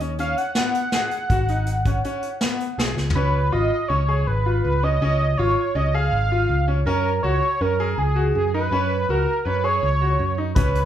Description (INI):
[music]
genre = progressive instrumental, band music in an uneven meter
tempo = 162 BPM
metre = 5/4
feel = straight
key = F# major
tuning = A4 = 443 Hz
[part]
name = bright grand piano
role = arpeggios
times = 0.0-10.8 s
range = B3 to G#4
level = -27 LUFS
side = left 2 dB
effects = none
[part]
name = picked electric bass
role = bass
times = 0.0-10.9 s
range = G#1 to F#2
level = -22 LUFS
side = equal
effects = none
[part]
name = vintage brush drum kit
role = drums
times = 0.0-3.2, 10.6-10.8 s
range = hi-hat, kick drum, snare drum, toms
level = -24 LUFS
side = equal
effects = none
[part]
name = wide unison lead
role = melody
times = 0.2-10.9 s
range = G#4 to F#5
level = -23 LUFS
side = right 2 dB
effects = none
[sound]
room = moderate large studio reverb, RT60 0.9 s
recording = band playing live in one room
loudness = -19 LUFS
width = side -10 dB against mid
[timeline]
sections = 0.0-3.2 A section; 3.2-10.9 B section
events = drum fill 3.0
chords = 0.0 G#m7; 3.2 C#7; 6.9 F#add9